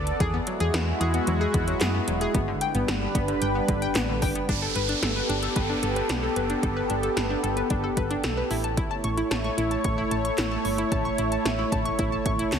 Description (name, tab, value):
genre	synth-pop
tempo	112 BPM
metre	4/4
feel	straight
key	unclear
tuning	A4 = 440 Hz
part	lush unison pad	sustained chords	0.0-12.6 s	G3 to D5	-28 LUFS	right 1 dB	chorus
part	solid FM bass	bass	0.0-12.6 s	E1 to F#2	-30 LUFS	equal	none
part	80s electronic pad drums	drums	0.1-12.6 s	handclaps, hi-hat, kick drum, snare drum	-29 LUFS	equal	none
part	analog pluck	arpeggios	0.2-12.6 s	D3 to C#6	-30 LUFS	left 3 dB	chorus, ping-pong delay
part	downlifter	sound effects	4.5-8.8 s	none	-33 LUFS	right 2 dB	none
room	moderate concert hall reverb, RT60 2.4 s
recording	heavily compressed radio sound, multiband compression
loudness	-23 LUFS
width	side -7 dB against mid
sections	0.0-4.5 A section; 4.5-12.6 B section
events	none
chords	0.2 Eadd9; 2.3 Gadd9; 8.5 A